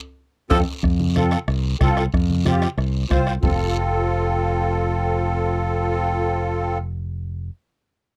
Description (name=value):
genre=latin, cumbia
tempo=185 BPM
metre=4/4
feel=straight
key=F major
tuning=A4 = 440 Hz
part: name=warm clarinet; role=melody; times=0.5-0.6 s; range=A4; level=-24 LUFS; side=equal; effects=none
part: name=raspy tenor saxophone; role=second line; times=0.5-0.6 s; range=F3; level=-29 LUFS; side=equal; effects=none
part: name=musette accordion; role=accompaniment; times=0.5-6.8 s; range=C4 to C5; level=-25 LUFS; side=equal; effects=none
part: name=modern bright fingered electric bass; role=bass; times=0.5-7.5 s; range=F1 to F2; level=-24 LUFS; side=equal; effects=none
part: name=bombo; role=percussion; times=0.5-3.5 s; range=none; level=-26 LUFS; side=equal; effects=none
part: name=congas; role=percussion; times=0.5-3.5 s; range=none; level=-28 LUFS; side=equal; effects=none
part: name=guiro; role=percussion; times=0.5-3.5 s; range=none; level=-38 LUFS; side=equal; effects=none
part: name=timbales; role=percussion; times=0.5-0.6 s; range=none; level=-34 LUFS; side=equal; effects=none
room=little or no reverb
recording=dry, close 1970s-style studio recording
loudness=-21 LUFS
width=mono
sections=0.8-3.4 A section; 3.4-6.0 B section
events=drum fill 0.0-0.8; band accent 0.0-0.8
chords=0.0 F